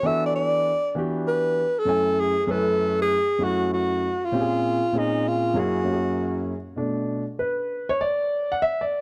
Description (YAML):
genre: hip hop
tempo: 98 BPM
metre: 4/4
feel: swing 64% on 16ths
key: unclear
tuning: A4 = 435 Hz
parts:
  - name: breathy alto saxophone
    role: melody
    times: 0.0-6.5 s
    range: D#4 to E5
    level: -25 LUFS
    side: equal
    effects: none
  - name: dark baby grand piano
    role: accompaniment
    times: 0.0-9.0 s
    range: F#2 to G#5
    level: -27 LUFS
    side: equal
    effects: none
room: light reverb, small room ambience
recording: none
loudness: -24 LUFS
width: mono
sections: 0.0-6.8 A section; 6.8-9.0 B section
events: grand piano solo 6.8-9.0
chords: 0.0 Em9; 1.9 F#m9; 4.3 A#m9; 5.6 F#7; 6.8 Bm7